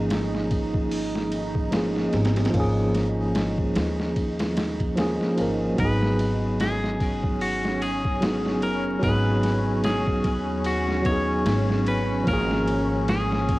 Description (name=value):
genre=trip hop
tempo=74 BPM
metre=4/4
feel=swing 57% on 16ths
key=G# dorian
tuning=A4 = 440 Hz
part: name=tine electric piano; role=accompaniment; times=0.0-13.6 s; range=E#3 to A#4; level=-25 LUFS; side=equal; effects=tremolo, vintage 12-bit sampler grit, tape echo
part: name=deep dark ambient pad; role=sustained chords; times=0.0-13.6 s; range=C#4 to D#4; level=-32 LUFS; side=equal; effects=chorus, built-in reverb
part: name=upright bass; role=bass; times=0.0-13.6 s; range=F#1 to D#2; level=-28 LUFS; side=equal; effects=none
part: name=boom bap sampler-style drum kit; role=drums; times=0.1-13.6 s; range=hi-hat, kick drum, ride cymbal, snare drum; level=-28 LUFS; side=equal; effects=overdrive
part: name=clean electric guitar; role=melody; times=5.8-13.6 s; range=F#4 to C#5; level=-28 LUFS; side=equal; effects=cassette tape, dub echo
room=little or no reverb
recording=home recording on cassette, vinyl crackle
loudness=-21 LUFS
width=side -19 dB against mid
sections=0.0-13.6 A section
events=none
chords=0.0 A#m7/G#; 5.8 G#m7; 12.3 A#m7/G#